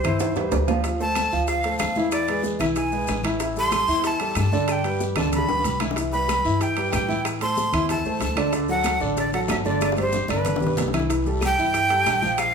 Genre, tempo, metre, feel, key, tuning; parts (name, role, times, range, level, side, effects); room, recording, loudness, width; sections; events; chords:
latin, salsa; 187 BPM; 4/4; straight; C major; A4 = 438 Hz
breathy bright jazz flute; melody; 0.0-12.5 s; B4 to C6; -24 LUFS; right 1 dB
warm concert grand piano; accompaniment; 0.0-12.5 s; D3 to F5; -25 LUFS; right 1 dB
upright bass; bass; 0.0-12.5 s; G1 to A2; -29 LUFS; left 1 dB
bongos; percussion; 0.0-12.5 s; -34 LUFS; left 6 dB
claves; percussion; 0.0-12.5 s; -39 LUFS; left 4 dB
congas; percussion; 0.0-12.5 s; -32 LUFS; left 1 dB
maracas; percussion; 0.0-12.5 s; -39 LUFS; left 6 dB
timbales; percussion; 0.0-12.5 s; -32 LUFS; right 6 dB
guiro; percussion; 0.8-12.5 s; -41 LUFS; left 4 dB
wet large studio reverb, RT60 0.9 s; band playing live in one room; -20 LUFS; side -6 dB against mid
0.0-11.1 A section; 11.1-12.5 A section
drum fill 0.0-0.8, 5.2-6.0, 9.8-11.1
0.0 Cmaj7; 0.8 Dm7; 2.1 E; 3.4 Am7; 4.7 G; 6.0 Cmaj7; 7.3 Am; 8.5 D; 9.8 Gsus4; 10.5 G; 11.1 C6